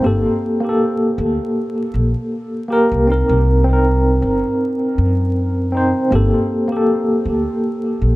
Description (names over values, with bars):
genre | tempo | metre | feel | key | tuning
trip hop | 79 BPM | 4/4 | swing 57% on 16ths | G harmonic minor | A4 = 441 Hz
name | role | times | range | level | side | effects
tine electric piano | accompaniment | 0.0-8.2 s | Bb3 to C5 | -16 LUFS | equal | tremolo, tape echo
upright bass | bass | 0.0-8.2 s | G1 to F#2 | -17 LUFS | equal | none
room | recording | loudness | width
moderate spring reverb, RT60 2.3 s | echo-heavy mix, vinyl crackle | -15 LUFS | side -18 dB against mid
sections
0.0-6.1 A section; 6.1-8.2 B section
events
none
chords
0.0 Gmadd9; 3.1 Cm7; 6.1 Gmadd9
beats
| 0.04 0.80 1.56 2.32 | 3.08 3.84 4.60 5.36 | 6.12 6.88 7.64